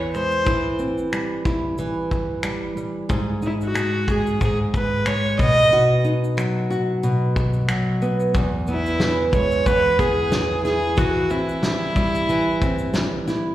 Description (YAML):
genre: acoustic pop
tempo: 91 BPM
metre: 4/4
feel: swing 55% on 16ths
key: E major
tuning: A4 = 441 Hz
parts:
  - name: nylon-string guitar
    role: accompaniment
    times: 0.0-13.5 s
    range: E2 to G#4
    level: -22 LUFS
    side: equal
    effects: none
  - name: warm viola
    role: melody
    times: 0.1-13.3 s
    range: E4 to D#5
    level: -21 LUFS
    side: equal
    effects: slapback echo
  - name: loose indie drum kit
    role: drums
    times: 0.1-13.4 s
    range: finger snaps, kick drum, shaker, snare drum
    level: -25 LUFS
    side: left 1 dB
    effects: none
room: moderate club reverb, RT60 0.7 s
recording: live gig heard through the venue's PA, recital hall reverb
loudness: -18 LUFS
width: side -13 dB against mid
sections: 0.0-8.3 A section; 8.3-13.5 B section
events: none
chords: 0.5 C/E; 3.1 G#5; 5.4 B; 8.3 E; 11.0 C/E